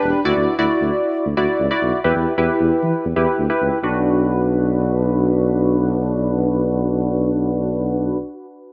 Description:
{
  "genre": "synth-pop",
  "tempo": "134 BPM",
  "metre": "4/4",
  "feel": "straight",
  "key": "B minor",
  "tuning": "A4 = 440 Hz",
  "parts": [
    { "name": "funky polysynth comp", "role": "accompaniment", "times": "0.0-8.2 s", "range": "D4 to D5", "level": "-21 LUFS", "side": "equal", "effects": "chorus, low-pass filter" },
    { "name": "mellow tuba", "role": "bass", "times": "0.0-8.2 s", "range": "E1 to E3", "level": "-22 LUFS", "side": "equal", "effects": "none" }
  ],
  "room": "moderate lush hall reverb, RT60 2.7 s",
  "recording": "none",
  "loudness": "-19 LUFS",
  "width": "mono",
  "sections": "0.0-3.8 A section; 3.8-7.4 B section",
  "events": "filter sweep on analog polysynth 0.0-3.8",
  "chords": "0.3 Dadd9; 2.0 Em; 3.8 Bm"
}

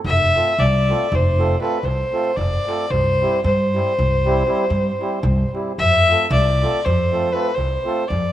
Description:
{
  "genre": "balkan folk, Balkan wedding band",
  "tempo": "230 BPM (eighths)",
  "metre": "11/8",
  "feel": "straight",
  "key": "unclear",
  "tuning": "A4 = 441 Hz",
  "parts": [
    { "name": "upright bass", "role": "bass", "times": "0.0-8.3 s", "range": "F1 to G2", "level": "-20 LUFS", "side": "equal", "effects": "none" },
    { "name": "dark fiddle", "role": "melody", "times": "0.1-8.3 s", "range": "B4 to E5", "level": "-19 LUFS", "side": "left 1 dB", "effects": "none" },
    { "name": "darbuka", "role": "percussion", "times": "0.1-8.2 s", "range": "none", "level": "-28 LUFS", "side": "right 1 dB", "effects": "none" },
    { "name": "mellow accordion", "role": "accompaniment", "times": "0.3-8.0 s", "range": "G3 to A4", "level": "-26 LUFS", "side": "right 4 dB", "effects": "none" }
  ],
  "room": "light reverb, small room ambience",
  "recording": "rough home demo mix",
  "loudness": "-16 LUFS",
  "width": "side -12 dB against mid",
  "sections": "0.0-8.3 A section",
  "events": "none",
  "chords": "0.0 F; 2.9 C; 5.8 F"
}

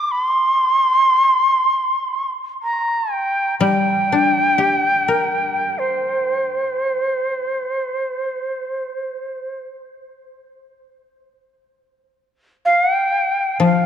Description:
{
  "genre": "japanese traditional, Japanese chamber music",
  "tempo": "free time",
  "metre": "none",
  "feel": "none",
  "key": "C suspended pentatonic",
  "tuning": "A4 = 440 Hz",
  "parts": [
    { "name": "reedy shakuhachi", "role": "melody", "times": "0.0-13.9 s", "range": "C5 to D6", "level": "-17 LUFS", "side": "right 1 dB", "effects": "none" },
    { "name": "koto", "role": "accompaniment", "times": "3.6-7.1, 13.6-13.9 s", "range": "F3 to Bb4", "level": "-19 LUFS", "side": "left 4 dB", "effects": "none" }
  ],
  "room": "wet cathedral reverb, RT60 4.7 s",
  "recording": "dark, warm production",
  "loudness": "-16 LUFS",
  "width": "side -9 dB against mid",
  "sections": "0.0-11.6 A section; 11.6-13.9 A section",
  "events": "none",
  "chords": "none"
}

